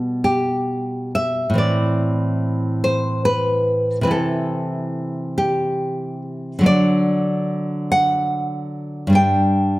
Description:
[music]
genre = romantic piece for solo classical guitar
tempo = 71 BPM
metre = 3/4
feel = uneven beats, rubato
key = unclear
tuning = A4 = 440 Hz
[part]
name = nylon-string guitar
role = solo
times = 0.0-9.8 s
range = G2 to G5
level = -18 LUFS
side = equal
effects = none
[sound]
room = moderate recital hall reverb, RT60 1.3 s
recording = none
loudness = -17 LUFS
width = side -18 dB against mid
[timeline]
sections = 0.0-9.8 A section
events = none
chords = 0.0 G/B; 1.6 Am; 4.1 Am/C; 6.7 D; 9.2 G5

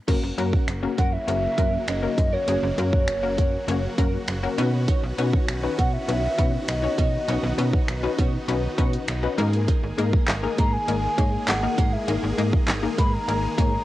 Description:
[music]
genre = dance-pop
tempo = 100 BPM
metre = 4/4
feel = straight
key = unclear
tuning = A4 = 441 Hz
[part]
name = wide unison pluck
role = accompaniment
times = 0.1-13.8 s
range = A#3 to C#5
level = -28 LUFS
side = left 6 dB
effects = sidechain pumping, cassette tape
[part]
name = supersaw chords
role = sustained chords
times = 0.1-13.8 s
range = C#3 to G#4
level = -32 LUFS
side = right 1 dB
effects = sidechain pumping, cassette tape
[part]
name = twelve-string electric guitar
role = riff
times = 0.1-13.8 s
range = A#3 to C#5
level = -35 LUFS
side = right 9 dB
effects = analog chorus, cassette tape
[part]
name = slap-like FM bass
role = bass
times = 0.1-13.8 s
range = F#1 to B2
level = -26 LUFS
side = equal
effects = sidechain pumping
[part]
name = pop drum kit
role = drums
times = 0.1-13.7 s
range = crash cymbal, finger snaps, handclaps, hi-hat, kick drum, snare drum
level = -23 LUFS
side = equal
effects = cassette tape
[part]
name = hollow clarinet-like synth lead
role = melody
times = 1.0-13.8 s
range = C#5 to B5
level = -28 LUFS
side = equal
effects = chorus, cassette tape, tape echo
[sound]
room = little or no reverb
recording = home recording on cassette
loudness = -21 LUFS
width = side -15 dB against mid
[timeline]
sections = 0.1-13.8 A section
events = none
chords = 0.1 F#; 4.6 Badd9; 9.4 G#sus2

